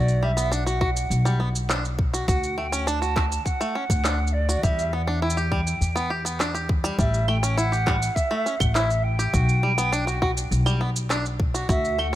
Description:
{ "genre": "folktronica", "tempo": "102 BPM", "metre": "4/4", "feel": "straight", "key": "unclear", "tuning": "A4 = 440 Hz", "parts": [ { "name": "mellow hollow silver concert flute", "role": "melody", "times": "0.0-12.2 s", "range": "D5 to A5", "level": "-28 LUFS", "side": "right 2 dB", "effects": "vintage 12-bit sampler grit, digital delay" }, { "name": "bluegrass banjo", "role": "arpeggios", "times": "0.0-12.2 s", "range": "G3 to G4", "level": "-28 LUFS", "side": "equal", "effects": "digital delay" }, { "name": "upright bass", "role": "bass", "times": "0.0-12.2 s", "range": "A1 to E2", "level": "-24 LUFS", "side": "equal", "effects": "none" }, { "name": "electronic shaker, handclaps and claves", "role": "drums", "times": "0.1-12.1 s", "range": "none", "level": "-30 LUFS", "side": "right 1 dB", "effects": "none" }, { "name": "electronic kick drum", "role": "drums", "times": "0.8-11.8 s", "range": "none", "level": "-24 LUFS", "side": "equal", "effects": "none" } ], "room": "light reverb, small room ambience", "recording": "none", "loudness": "-21 LUFS", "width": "side -14 dB against mid", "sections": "0.0-12.2 A section", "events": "none", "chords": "0.0 Gmaj7/B (rootless); 2.3 D; 4.6 Em; 7.0 A7(no3); 9.3 Gmaj7/B", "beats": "0.52 1.10 1.69 | 2.28 2.87 3.46 4.04 | 4.63 5.22 5.81 6.40 | 6.99 7.57 8.16 8.75 | 9.34 9.93 10.52 11.10 | 11.69" }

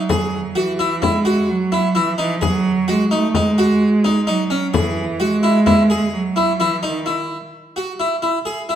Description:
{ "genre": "contemporary instrumental, chamber music in an uneven meter", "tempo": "129 BPM", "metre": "5/4", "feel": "straight", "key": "E major", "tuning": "A4 = 444 Hz", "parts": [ { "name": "clear cello", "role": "second line", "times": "0.0-7.1 s", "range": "D#3 to A3", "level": "-18 LUFS", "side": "right 2 dB", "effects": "none" }, { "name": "harpsichord", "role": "arpeggios", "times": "0.1-8.8 s", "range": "C#4 to G#4", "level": "-20 LUFS", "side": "left 1 dB", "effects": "none" }, { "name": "frame drum", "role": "percussion", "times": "0.1-6.7 s", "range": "none", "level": "-24 LUFS", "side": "left 4 dB", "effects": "none" } ], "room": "wet recital hall reverb, RT60 1.4 s", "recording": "none", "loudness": "-15 LUFS", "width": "side -10 dB against mid", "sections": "0.0-7.1 A section; 7.1-8.8 B section", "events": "none", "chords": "0.0 E; 2.4 F#sus2; 4.7 E; 7.1 N.C.", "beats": "| 0.10 0.56 1.03 1.49 1.96 | 2.42 2.88 3.35 3.81 4.28 | 4.74 5.21 5.67 6.13 6.60 | 7.07 7.53 7.99 8.46" }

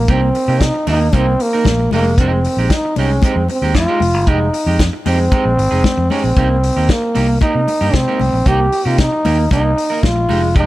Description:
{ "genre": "disco", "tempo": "115 BPM", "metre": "4/4", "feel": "straight", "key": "unclear", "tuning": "A4 = 438 Hz", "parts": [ { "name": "growling trombone", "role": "melody", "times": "0.0-10.7 s", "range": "Bb3 to G4", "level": "-17 LUFS", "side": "equal", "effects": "tube saturation" }, { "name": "fingered electric bass", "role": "bass", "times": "0.0-10.7 s", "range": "F1 to C3", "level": "-16 LUFS", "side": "equal", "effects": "none" }, { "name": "electric guitar at the edge of break-up", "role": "accompaniment", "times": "0.1-10.7 s", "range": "Ab3 to Bb4", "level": "-22 LUFS", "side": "right 6 dB", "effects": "none" }, { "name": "warm soul drum kit", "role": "drums", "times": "0.1-10.7 s", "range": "hi-hat, kick drum, snare drum", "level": "-18 LUFS", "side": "equal", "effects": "none" }, { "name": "congas", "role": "percussion", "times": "0.6-10.4 s", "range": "none", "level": "-25 LUFS", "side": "left 6 dB", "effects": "none" } ], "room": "light reverb, small room ambience", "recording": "dark, warm production", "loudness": "-12 LUFS", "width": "side -16 dB against mid", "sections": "0.0-10.7 A section", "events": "none", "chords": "0.0 Cm7; 1.9 Fm9; 6.4 Cm7", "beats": "| 0.09 0.61 1.13 1.66 | 2.18 2.70 3.23 3.75 | 4.27 4.79 5.32 5.84 | 6.37 6.89 7.41 7.94 | 8.46 8.98 9.51 10.03 | 10.56" }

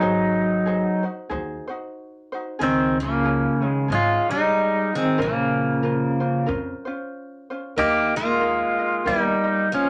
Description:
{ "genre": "Hawaiian", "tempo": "93 BPM", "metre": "4/4", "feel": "swing 59% on 8ths", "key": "Ab major", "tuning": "A4 = 440 Hz", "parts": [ { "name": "pedal steel guitar", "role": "melody", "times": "0.0-9.9 s", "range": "Db3 to G4", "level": "-22 LUFS", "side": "equal", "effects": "none" }, { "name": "ukulele", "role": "accompaniment", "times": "0.0-9.9 s", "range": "Db4 to Eb5", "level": "-33 LUFS", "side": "equal", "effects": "none" }, { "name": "upright bass", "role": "bass", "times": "0.0-9.3 s", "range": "Ab1 to F2", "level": "-35 LUFS", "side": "equal", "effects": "none" }, { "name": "picked steel-string acoustic guitar", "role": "second line", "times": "2.6-9.9 s", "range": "F3 to Eb4", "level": "-31 LUFS", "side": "equal", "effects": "none" } ], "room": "wet small room reverb, RT60 0.5 s", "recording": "none", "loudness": "-22 LUFS", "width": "mono", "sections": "0.0-9.9 A section", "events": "none", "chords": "0.0 Ab7; 2.6 Dbadd9; 5.2 Bbmadd9; 7.8 Ebsus4; 9.1 Ebadd9", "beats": "| 0.02 0.67 1.31 1.96 | 2.61 3.25 3.90 4.54 | 5.19 5.83 6.48 7.12 | 7.77 8.41 9.05 9.70" }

